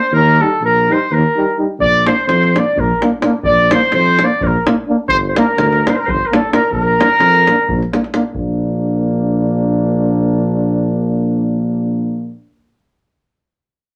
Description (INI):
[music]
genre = balkan folk, Balkan brass band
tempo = 256 BPM (eighths)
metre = 7/8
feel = straight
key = Bb major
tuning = A4 = 440 Hz
[part]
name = dark trumpet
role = melody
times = 0.0-7.9 s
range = A4 to D5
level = -17 LUFS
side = equal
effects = none
[part]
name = clear clarinet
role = second line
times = 0.0-7.9 s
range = A4 to D5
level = -21 LUFS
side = equal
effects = none
[part]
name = mellow tuba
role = bass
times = 0.1-12.4 s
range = G1 to F2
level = -20 LUFS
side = equal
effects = none
[part]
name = warm euphonium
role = accompaniment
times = 0.4-12.4 s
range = D4 to Eb4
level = -24 LUFS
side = equal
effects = none
[part]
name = warm trombone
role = accompaniment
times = 0.4-12.4 s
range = G3 to Bb3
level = -21 LUFS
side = equal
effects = none
[part]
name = davul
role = percussion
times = 1.8-8.6 s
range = none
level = -23 LUFS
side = equal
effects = none
[sound]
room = wet small room reverb, RT60 0.5 s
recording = none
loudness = -14 LUFS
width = mono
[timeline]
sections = 0.0-8.4 A section; 8.4-11.6 B section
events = none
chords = 0.1 Eb; 1.8 Bb; 5.1 Gm; 6.7 Bb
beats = | 0.14 0.37 0.61 0.85 1.08 1.32 1.56 | 1.79 2.03 2.26 2.50 2.74 2.97 3.21 | 3.44 3.68 3.91 4.15 4.38 4.62 4.85 | 5.09 5.32 5.55 5.79 6.02 6.26 6.49 | 6.72 6.96 7.19 7.42 7.66 7.89 8.12 | 8.36 8.59 8.82 9.05 9.28 9.52 9.75 | 9.98 10.21 10.44 10.67 10.90 11.13 11.37